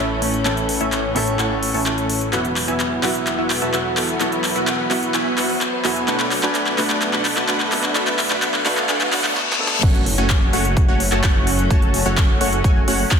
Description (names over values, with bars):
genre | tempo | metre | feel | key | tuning
EDM, festival progressive house | 128 BPM | 4/4 | straight | F# minor | A4 = 439 Hz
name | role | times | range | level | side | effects
clear grand piano | accompaniment | 0.0-9.9 s | A2 to C#5 | -25 LUFS | right 1 dB | sidechain pumping, digital delay
warm studio string section | sustained chords | 0.0-13.2 s | D3 to C#4 | -28 LUFS | left 3 dB | sidechain pumping
supersaw stab | riff | 0.0-13.1 s | A3 to A5 | -22 LUFS | equal | sidechain pumping, low-pass filter, digital delay
wide detuned saw bass | bass | 0.0-13.0 s | E1 to E2 | -27 LUFS | equal | chorus, sidechain pumping
riser, reverse cymbal and impact | sound effects | 1.9-11.7 s | none | -29 LUFS | left 2 dB | none
big-room dance drum kit | drums | 0.2-13.2 s | crash cymbal, handclaps, hi-hat, snare drum | -22 LUFS | equal | soft clipping on snare, high-pass filter on snare, high-pass filter on hats, high-pass filter on cymbals, high-pass filter on room
electronic kick drum | drums | 9.8-13.2 s | none | -16 LUFS | equal | none
room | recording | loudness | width
moderate lush hall reverb, RT60 2.4 s | dense, heavily limited modern master, high-pass filter | -16 LUFS | side -7 dB against mid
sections
0.0-9.8 A section; 9.8-13.2 B section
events
build-up 0.0-9.8; drum fill 0.0-9.4, 9.4-9.8; filter sweep on supersaw synth 0.0-9.8; filter sweep 0.0-9.8; reverse cymbal 8.9-9.8; drop 9.8-13.2; impact 9.8-11.7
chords
0.0 A; 2.3 Esus2; 6.1 Bm7; 9.8 F#m